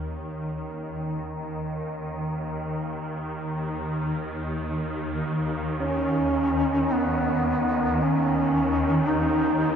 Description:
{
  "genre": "dark ambient drone",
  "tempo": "free time",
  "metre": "none",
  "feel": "none",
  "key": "unclear",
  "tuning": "A4 = 440 Hz",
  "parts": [
    { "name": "swarming drone", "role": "drone", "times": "0.0-9.8 s", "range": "Eb2 to Eb3", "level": "-27 LUFS", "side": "equal", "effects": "built-in reverb" },
    { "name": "bronze singing bowl", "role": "texture", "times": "0.0-9.8 s", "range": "Db4 to Db5", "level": "-34 LUFS", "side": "right 2 dB", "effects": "shimmer reverb" },
    { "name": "warm duduk", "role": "melody", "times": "5.8-9.8 s", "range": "Cb4 to Eb4", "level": "-23 LUFS", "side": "equal", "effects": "shimmer reverb, ping-pong delay" }
  ],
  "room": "wet cathedral reverb, RT60 4.8 s",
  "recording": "worn, warbling old tape, cassette tape, warbly pitch drift",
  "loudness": "-24 LUFS",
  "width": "side -8 dB against mid",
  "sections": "0.0-9.8 A section",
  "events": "none",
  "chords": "0.0 Dbsus2/Eb",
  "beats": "free time"
}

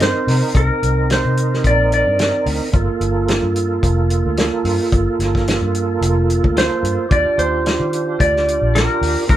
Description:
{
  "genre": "straight-eighth soul blues",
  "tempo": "110 BPM",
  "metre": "4/4",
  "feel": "swing 55% on 16ths",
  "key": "G minor",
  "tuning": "A4 = 435 Hz",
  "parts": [
    { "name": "clean lap steel guitar", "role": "melody", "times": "0.0-2.4, 6.6-9.4 s", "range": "A4 to D5", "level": "-18 LUFS", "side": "equal", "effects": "none" },
    { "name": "percussive tonewheel organ", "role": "accompaniment", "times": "0.0-9.4 s", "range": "Bb3 to Bb4", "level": "-20 LUFS", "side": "right 3 dB", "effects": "slow rotary speaker, overdrive, chorus vibrato" },
    { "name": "vintage muted fingered electric bass", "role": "bass", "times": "0.0-9.4 s", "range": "F1 to Eb3", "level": "-19 LUFS", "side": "left 1 dB", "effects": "none" },
    { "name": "warm soul drum kit", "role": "drums", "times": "0.0-9.4 s", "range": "hi-hat, kick drum, snare drum", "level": "-19 LUFS", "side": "left 1 dB", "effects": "none" }
  ],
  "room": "wet studio reverb, RT60 0.5 s",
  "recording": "band playing live in one room",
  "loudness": "-14 LUFS",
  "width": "side -12 dB against mid",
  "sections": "0.0-9.4 A section",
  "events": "none",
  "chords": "0.0 Cm9; 2.7 Gm9; 7.1 Ebmaj7",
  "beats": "0.00 | 0.55 1.10 1.65 2.19 | 2.74 3.29 3.83 4.38 | 4.93 5.47 6.02 6.57 | 7.11 7.66 8.20 8.75 | 9.29"
}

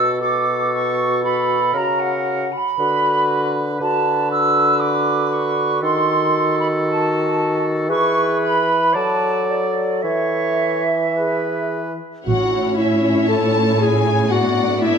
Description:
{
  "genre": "classical",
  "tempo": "116 BPM",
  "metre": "4/4",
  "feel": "rubato",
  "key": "A major from 3.8 s",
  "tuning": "A4 = 440 Hz",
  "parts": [
    { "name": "bright small flute group", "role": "second line", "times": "0.0-11.7 s", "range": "D5 to E6", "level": "-19 LUFS", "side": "right 2 dB", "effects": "none" },
    { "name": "clear clarinet", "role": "second line", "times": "0.0-15.0 s", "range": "E4 to A4", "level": "-23 LUFS", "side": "equal", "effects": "none" },
    { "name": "warm oboe", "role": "second line", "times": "0.0-12.0 s", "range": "A4 to D5", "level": "-25 LUFS", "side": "equal", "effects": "none" },
    { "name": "warm bassoon", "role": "accompaniment", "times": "0.0-12.0 s", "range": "B2 to F#3", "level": "-22 LUFS", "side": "equal", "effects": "none" },
    { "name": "warm studio violin section", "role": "melody", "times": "12.3-15.0 s", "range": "C#5 to D5", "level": "-27 LUFS", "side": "left 4 dB", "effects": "none" },
    { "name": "dark symphonic violin section", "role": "second line", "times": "12.3-15.0 s", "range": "E5 to A5", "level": "-23 LUFS", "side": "left 4 dB", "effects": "none" },
    { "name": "warm symphonic viola section", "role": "accompaniment", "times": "12.3-15.0 s", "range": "B3 to E4", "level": "-23 LUFS", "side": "left 2 dB", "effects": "none" },
    { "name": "rich studio double bass section", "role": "bass", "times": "12.3-12.8 s", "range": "A1", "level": "-23 LUFS", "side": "right 4 dB", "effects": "none" },
    { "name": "warm symphonic cello section", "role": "bass", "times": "12.3-15.0 s", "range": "A2", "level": "-21 LUFS", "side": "right 1 dB", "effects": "none" }
  ],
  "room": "moderate concert hall reverb, RT60 2.4 s",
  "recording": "none",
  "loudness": "-16 LUFS",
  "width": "side -6 dB against mid",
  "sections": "0.0-12.3 A section; 12.3-15.0 B section",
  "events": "none",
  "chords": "0.0 Bm7; 1.7 F#/C#; 2.8 Bm/D; 5.8 D#dim7; 7.9 E; 8.9 D/F#; 10.0 A/E; 12.3 A; 14.3 Bm/A",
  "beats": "0.21 0.73 1.24 | 1.75 2.27 2.79 3.29 | 3.80 4.31 4.81 5.32 | 5.83 6.34 6.86 7.38 | 7.90 8.42 8.94 9.48 | 10.04 10.60 11.17 11.73 | 12.27 12.79 13.30 13.81 | 14.32 14.83"
}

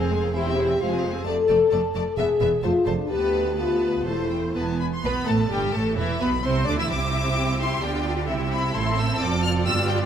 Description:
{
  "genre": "quick classical-period movement for symphony orchestra",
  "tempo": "130 BPM",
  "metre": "2/4",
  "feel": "rubato",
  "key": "unclear",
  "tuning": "A4 = 443 Hz",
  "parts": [
    { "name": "clear chamber violin section", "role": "melody", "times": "0.0-10.0 s", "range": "E5 to F6", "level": "-30 LUFS", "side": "left 3 dB", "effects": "none" },
    { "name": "rich chamber violin section", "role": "second line", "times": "0.0-10.1 s", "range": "E4 to E5", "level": "-30 LUFS", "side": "left 2 dB", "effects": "none" },
    { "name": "rich chamber viola section", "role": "accompaniment", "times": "0.0-10.1 s", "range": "E3 to F4", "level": "-29 LUFS", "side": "right 1 dB", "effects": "none" },
    { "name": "mellow French horn section", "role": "sustained chords", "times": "0.0-4.8 s", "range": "D4 to A4", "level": "-22 LUFS", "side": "left 3 dB", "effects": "none" },
    { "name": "dark chamber double bass section", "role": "bass", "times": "0.0-10.1 s", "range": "E1 to D2", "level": "-29 LUFS", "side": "right 4 dB", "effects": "none" },
    { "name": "rich studio cello section", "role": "bass", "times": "0.0-10.1 s", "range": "D2 to E3", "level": "-29 LUFS", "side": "right 3 dB", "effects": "none" }
  ],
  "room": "wet scoring stage reverb, RT60 2.0 s",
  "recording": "none",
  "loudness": "-21 LUFS",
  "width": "side -8 dB against mid",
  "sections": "0.0-5.0 A section; 5.0-10.1 B section",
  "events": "none",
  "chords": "0.3 C/E; 0.8 Fm; 1.3 Dm/F; 2.2 E; 2.6 F; 3.1 Bm7b5/D; 4.1 Am/E; 4.6 E; 5.0 Gadd9; 6.0 E5; 6.4 Cadd9; 6.9 C; 7.8 G7/D; 8.3 C; 8.8 Am; 9.2 Dm7/F",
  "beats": "| 0.35 0.81 | 1.26 1.72 | 2.18 2.63 | 3.10 3.57 | 4.06 4.56 | 5.05 5.52 | 5.98 6.45 | 6.91 7.38 | 7.84 8.30 | 8.76 9.21 | 9.66"
}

